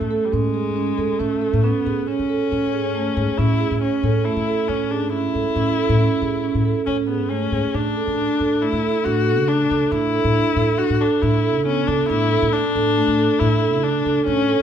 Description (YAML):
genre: contemporary instrumental, chamber music in an uneven meter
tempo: 138 BPM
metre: 5/4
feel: straight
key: unclear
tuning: A4 = 440 Hz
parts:
  - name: warm viola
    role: second line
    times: 0.0-14.6 s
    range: G3 to F#4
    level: -23 LUFS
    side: left 7 dB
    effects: none
  - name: upright bass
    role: bass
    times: 0.0-14.5 s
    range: G#2 to C#3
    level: -23 LUFS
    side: left 1 dB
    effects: none
  - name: marimba with soft mallets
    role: arpeggios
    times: 0.1-14.6 s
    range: A3 to A4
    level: -21 LUFS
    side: right 5 dB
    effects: none
room: moderate recital hall reverb, RT60 1.5 s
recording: minimal, uncompressed stereo recording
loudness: -17 LUFS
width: side -9 dB against mid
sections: 0.0-14.6 A section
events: none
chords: 0.0 Amaj7; 7.7 Dsus2/A